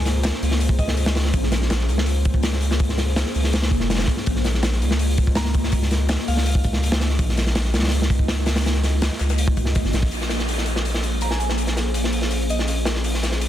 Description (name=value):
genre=drum and bass, jungle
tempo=164 BPM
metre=4/4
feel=straight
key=Bb minor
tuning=A4 = 442 Hz
part: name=ethereal airy pad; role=sustained chords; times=0.0-13.5 s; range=Bb3 to C5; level=-28 LUFS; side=equal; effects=ensemble chorus, built-in reverb
part: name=saturated sub bass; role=bass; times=0.0-13.5 s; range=F1 to Db2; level=-22 LUFS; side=equal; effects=none
part: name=crunchy breakbeat drum kit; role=drums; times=0.1-13.5 s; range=hi-hat, kick drum, snare drum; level=-22 LUFS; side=equal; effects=high-pass filter on kick, high-pass filter on hats, high-pass filter on snare, high-pass filter on room
part: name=tight metal drum kit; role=drums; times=0.1-13.5 s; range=hi-hat, snare drum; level=-35 LUFS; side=left 4 dB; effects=high-pass filter on hats, high-pass filter on snare, high-pass filter on room
part: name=glassy synth bell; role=melody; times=0.8-1.1, 5.4-6.8, 11.2-12.8 s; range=Eb5 to Bb5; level=-33 LUFS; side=right 1 dB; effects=chorus, tremolo, vintage 12-bit sampler grit, dub echo
part: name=downlifter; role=sound effects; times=10.1-13.0 s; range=none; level=-32 LUFS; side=right 1 dB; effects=none
room=small room ambience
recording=dense, heavily limited modern master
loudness=-18 LUFS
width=side -12 dB against mid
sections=0.0-10.1 A section; 10.1-13.5 B section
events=drop 0.0-10.1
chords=0.0 Bbm9; 4.3 Ebmadd9/Bb; 10.1 Bbm9